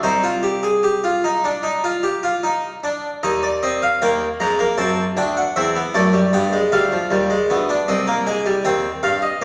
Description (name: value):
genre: classical, baroque-style 3-part fugue for harpsichord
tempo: 77 BPM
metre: 4/4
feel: straight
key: C minor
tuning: A4 = 440 Hz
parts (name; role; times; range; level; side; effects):
- harpsichord; solo; 0.0-9.4 s; C2 to Bb5; -19 LUFS; equal; none
room: wet recital hall reverb, RT60 1.5 s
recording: none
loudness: -19 LUFS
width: mono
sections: 0.0-3.2 A section; 3.2-9.4 B section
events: none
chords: 0.0 Cm; 3.2 Cm/Eb; 4.8 D7; 6.3 G; 7.9 Cm